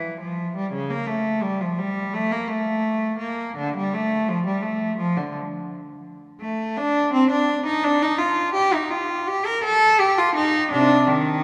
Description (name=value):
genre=classical, baroque-style suite movement for unaccompanied cello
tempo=84 BPM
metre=4/4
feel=rubato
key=unclear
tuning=A4 = 439 Hz
part: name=rich cello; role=solo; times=0.0-11.4 s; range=C3 to Bb4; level=-22 LUFS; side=equal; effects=none
room=wet church reverb, RT60 2.6 s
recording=none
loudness=-22 LUFS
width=mono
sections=0.0-11.4 A section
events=none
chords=none